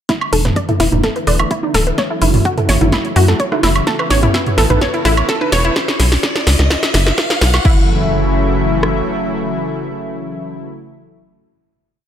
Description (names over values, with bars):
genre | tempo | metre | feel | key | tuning
progressive house | 127 BPM | 4/4 | straight | F# minor | A4 = 443 Hz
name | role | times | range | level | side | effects
lush unison pad | sustained chords | 0.1-10.7 s | C#3 to E4 | -20 LUFS | equal | chorus, sidechain pumping
analog pluck | arpeggios | 0.1-7.9 s | E4 to D5 | -18 LUFS | equal | chorus, sidechain pumping, dub echo
deep house drum kit | drums | 0.1-7.7 s | crash cymbal, hi-hat, snare drum, woodblock | -18 LUFS | equal | overdrive, sidechain pumping on hats, sidechain pumping on perc, sidechain pumping on cymbals
pop drum kit | drums | 0.1-8.9 s | kick drum, rim click | -17 LUFS | equal | high-pass filter on kick, high-pass filter on snare
riser and impact | sound effects | 2.5-10.7 s | none | -25 LUFS | left 1 dB | none
tight sequencer bass | bass | 0.3-9.0 s | D1 to F#2 | -15 LUFS | equal | tube saturation, sidechain pumping
punchy analog drum machine | percussion | 0.3-5.5 s | congas, rim click, toms | -19 LUFS | right 2 dB | sidechain pumping on perc, sidechain pumping on toms, sidechain pumping on snare
room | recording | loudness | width
light reverb | none | -12 LUFS | side -9 dB against mid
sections
0.1-7.7 build; 7.7-11.4 final chord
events
build-up 0.1-7.7; drum fill 0.1-7.7; filter sweep on synth arpeggio sound 0.1-5.8; filter sweep on analog synth pad 0.1-5.8; riser 2.5-7.7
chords
0.1 E7sus4; 2.0 F#m7; 3.9 Aadd9; 5.8 B5; 7.7 F#m7